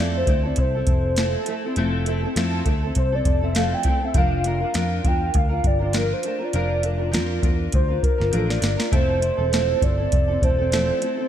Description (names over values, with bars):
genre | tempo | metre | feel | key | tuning
indie pop, bedroom pop | 101 BPM | 4/4 | swing 55% on 16ths | F major | A4 = 438 Hz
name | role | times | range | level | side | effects
warbly nostalgic lead | melody | 0.0-11.3 s | A4 to G5 | -25 LUFS | right 1 dB | tremolo, lush chorus, tape echo
fingerpicked steel-string acoustic guitar | accompaniment | 0.0-11.3 s | F3 to Bb4 | -26 LUFS | equal | analog chorus, warbly pitch drift
vintage muted picked electric bass | bass | 0.0-10.9 s | E1 to F2 | -24 LUFS | equal | none
soft vintage rhythm box | drums | 0.3-11.2 s | hi-hat, kick drum, snare drum | -23 LUFS | equal | none
room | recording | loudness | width
light reverb | none | -19 LUFS | side -10 dB against mid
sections
0.0-8.9 A section; 8.9-11.3 B section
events
soft synth lead solo 0.0-8.9; drum fill 8.3-8.9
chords
0.0 Fmaj7; 4.2 Bbmaj7/F; 8.9 Fmaj7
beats
0.57 1.17 | 1.77 2.36 2.96 3.56 | 4.15 4.75 5.34 5.94 | 6.54 7.13 7.73 8.33 | 8.92 9.52 10.12 10.72